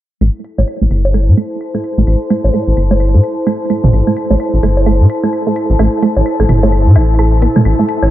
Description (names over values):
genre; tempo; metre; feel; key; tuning
minimal techno; 129 BPM; 4/4; swing 60% on 16ths; A minor; A4 = 437 Hz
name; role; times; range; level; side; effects
resonant blip pluck; riff; 0.2-7.8 s; A3 to A4; -17 LUFS; right 4 dB; chorus, dub echo
rubbery square bass; bass; 0.2-8.1 s; G1 to A2; -10 LUFS; equal; none
electronic claves, bongos, woodblock and toms; percussion; 0.2-8.1 s; none; -18 LUFS; right 2 dB; dub echo
airy breathy pad; texture; 0.7-8.1 s; E4 to A5; -18 LUFS; left 1 dB; chorus
electronic hi-hat; drums; 0.4-8.0 s; none; -49 LUFS; right 2 dB; none
room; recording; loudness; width
light reverb; low-pass filter; -10 LUFS; side -14 dB against mid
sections
0.2-8.1 A section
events
filter sweep on synth pluck 0.2-8.1; filter sweep 0.2-8.1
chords
0.2 Am